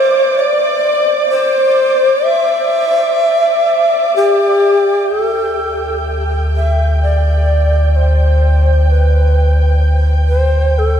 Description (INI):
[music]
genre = ambient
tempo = 64 BPM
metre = 4/4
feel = straight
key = unclear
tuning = A4 = 444 Hz
[part]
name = breathy bright long shakuhachi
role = melody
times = 0.0-11.0 s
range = G4 to E5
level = -13 LUFS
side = equal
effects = shimmer reverb, diffuse ambient delay
[part]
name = muted symphonic violin section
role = texture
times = 0.0-11.0 s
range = D5 to G6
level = -22 LUFS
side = right 1 dB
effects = shimmer reverb
[part]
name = warm sub bass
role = bass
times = 5.1-11.0 s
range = D2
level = -12 LUFS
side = equal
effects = none
[sound]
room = wet huge ambient reverb, RT60 7.6 s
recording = dark, warm production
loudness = -11 LUFS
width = side -9 dB against mid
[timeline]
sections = 0.0-5.1 A section; 5.1-11.0 B section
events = none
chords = 0.0 N.C.; 5.1 Csus2/D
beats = 0.39 | 1.32 2.25 3.20 4.15 | 5.11 6.06 7.01 7.95 | 8.88 9.81 10.75